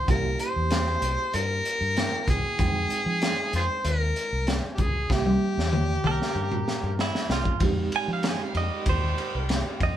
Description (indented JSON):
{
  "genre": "straight-eighth soul blues",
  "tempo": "96 BPM",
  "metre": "4/4",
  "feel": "straight",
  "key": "F minor",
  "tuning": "A4 = 436 Hz",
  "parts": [
    { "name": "warm harmonica", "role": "melody", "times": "0.0-7.0 s", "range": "F4 to C5", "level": "-28 LUFS", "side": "equal", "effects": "overdrive" },
    { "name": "mellow reed electric piano", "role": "accompaniment", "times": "0.0-10.0 s", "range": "Ab3 to G5", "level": "-35 LUFS", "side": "right 6 dB", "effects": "fast tremolo" },
    { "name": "vintage muted fingered electric bass", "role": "bass", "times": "0.0-10.0 s", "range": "C2 to F3", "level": "-28 LUFS", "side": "left 1 dB", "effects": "none" },
    { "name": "crunchy breakbeat drum kit", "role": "drums", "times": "0.1-10.0 s", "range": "hi-hat, kick drum, ride cymbal, snare drum, toms", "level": "-27 LUFS", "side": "equal", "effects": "none" },
    { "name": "direct-recorded clean electric guitar", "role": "second line", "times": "6.1-10.0 s", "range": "E4 to Ab5", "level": "-30 LUFS", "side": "right 6 dB", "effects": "none" },
    { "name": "bright horn section", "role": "sustained chords", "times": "7.6-10.0 s", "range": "G3 to G4", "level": "-37 LUFS", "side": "right 2 dB", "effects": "none" }
  ],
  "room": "light reverb",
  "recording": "band playing live in one room",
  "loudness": "-23 LUFS",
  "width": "side -11 dB against mid",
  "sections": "0.0-7.6 A section; 7.6-10.0 B section",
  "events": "drum fill 5.1-7.6; clean electric guitar solo 7.6-10.0",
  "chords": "0.1 C7b9; 2.6 Fm9; 5.1 C7b9; 7.6 Fm9"
}